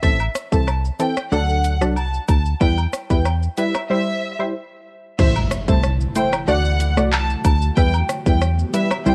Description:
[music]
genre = dancehall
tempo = 93 BPM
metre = 4/4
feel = straight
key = A dorian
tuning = A4 = 440 Hz
[part]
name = rich studio violin section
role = melody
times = 0.0-9.1 s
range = E5 to A5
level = -28 LUFS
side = equal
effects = cassette tape
[part]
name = punchy chord stab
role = accompaniment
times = 0.0-9.1 s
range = E3 to D5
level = -24 LUFS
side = equal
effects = chorus, sidechain pumping, cassette tape
[part]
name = solid FM bass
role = bass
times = 0.0-9.1 s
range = A1 to E2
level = -22 LUFS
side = equal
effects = none
[part]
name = island pop drum kit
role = drums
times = 0.0-9.1 s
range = crash cymbal, handclaps, hi-hat, kick drum, rim click, shaker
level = -22 LUFS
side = equal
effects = cassette tape
[part]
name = woodblock and cabasa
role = percussion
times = 0.2-9.0 s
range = none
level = -32 LUFS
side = equal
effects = none
[part]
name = ethereal airy pad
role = sustained chords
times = 5.7-9.1 s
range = C3 to G4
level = -35 LUFS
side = equal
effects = ensemble chorus, built-in reverb, sidechain pumping, cassette tape
[part]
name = impact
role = sound effects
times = 5.2-7.8 s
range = none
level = -30 LUFS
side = equal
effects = none
[sound]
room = little or no reverb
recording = home recording on cassette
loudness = -19 LUFS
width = mono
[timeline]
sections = 0.0-5.2 A section; 5.2-9.1 B section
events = break 3.9-5.2; impact 5.2-7.8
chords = 0.0 Am; 1.3 D; 2.6 Em; 3.9 C; 5.2 Am; 6.5 D; 7.8 Em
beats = | 0.03 0.67 1.32 1.96 | 2.61 3.25 3.90 4.54 | 5.19 5.83 6.48 7.12 | 7.77 8.41 9.06

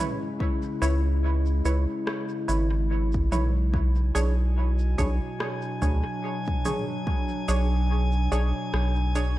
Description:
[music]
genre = ambient dub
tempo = 72 BPM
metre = 4/4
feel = swing 58% on 16ths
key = B dorian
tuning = A4 = 440 Hz
[part]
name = warbly tape-like pad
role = sustained chords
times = 0.0-9.4 s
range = B2 to E4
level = -32 LUFS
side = equal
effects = chorus, built-in reverb
[part]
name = filtered dub chord stab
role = stabs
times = 0.0-9.3 s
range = D4 to C#5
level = -32 LUFS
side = right 2 dB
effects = lush chorus, cassette tape, dub echo
[part]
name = electronic kick drum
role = drums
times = 0.4-7.3 s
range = none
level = -28 LUFS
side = equal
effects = none
[part]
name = round analog bass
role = bass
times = 0.8-9.4 s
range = G#1 to D2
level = -23 LUFS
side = equal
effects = none
[part]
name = organic electronic drum kit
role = drums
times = 0.8-9.3 s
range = rim click, shaker, toms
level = -36 LUFS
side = right 1 dB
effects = dub echo
[part]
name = drifting glass-harmonics texture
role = texture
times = 4.4-9.4 s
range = G#5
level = -36 LUFS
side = left 2 dB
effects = chorus, built-in reverb
[sound]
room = digital ambience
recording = echo-heavy mix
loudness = -23 LUFS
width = side -15 dB against mid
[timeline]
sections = 0.0-9.4 A section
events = fade-out 8.2-9.4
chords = 0.0 C#m7; 3.7 Bm69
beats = | 0.40 1.24 2.07 2.90 | 3.74 4.57 5.40 6.24 | 7.07 7.90 8.74

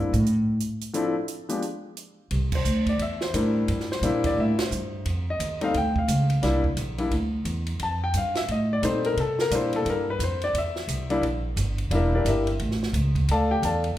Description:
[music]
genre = jazz piano trio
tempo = 175 BPM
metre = 4/4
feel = swing 62% on 8ths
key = C mixolydian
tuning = A4 = 440 Hz
[part]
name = warm grand piano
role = melody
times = 0.0-13.8 s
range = F3 to A5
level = -26 LUFS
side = left 2 dB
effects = none
[part]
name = upright bass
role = bass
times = 0.0-14.0 s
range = E1 to C3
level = -25 LUFS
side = right 1 dB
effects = none
[part]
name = compact cocktail drum kit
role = drums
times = 0.1-13.9 s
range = crash cymbal, hi-hat, kick drum, ride cymbal, snare drum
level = -33 LUFS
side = right 3 dB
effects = none
[sound]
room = moderate recital hall reverb, RT60 1.4 s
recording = recorded in a church or concert hall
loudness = -23 LUFS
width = side -13 dB against mid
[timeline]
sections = 0.0-2.3 A section; 2.3-14.0 B section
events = upright bass solo 0.0-2.3; band accent 2.5, 4.5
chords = 0.3 N.C.; 0.9 Dm7; 1.6 N.C.; 2.3 C7; 5.1 F7(no3); 6.4 C7; 7.8 F7; 9.2 C7; 11.9 Em7b5; 12.6 A; 13.3 Dm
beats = 0.26 0.61 | 0.95 1.29 1.63 1.98 | 2.32 2.66 3.00 3.35 | 3.69 4.03 4.38 4.72 | 5.06 5.41 5.75 6.09 | 6.44 6.78 7.12 7.46 | 7.81 8.15 8.49 8.84 | 9.18 9.52 9.86 10.21 | 10.55 10.89 11.23 11.58 | 11.92 12.26 12.61 12.95 | 13.29 13.63

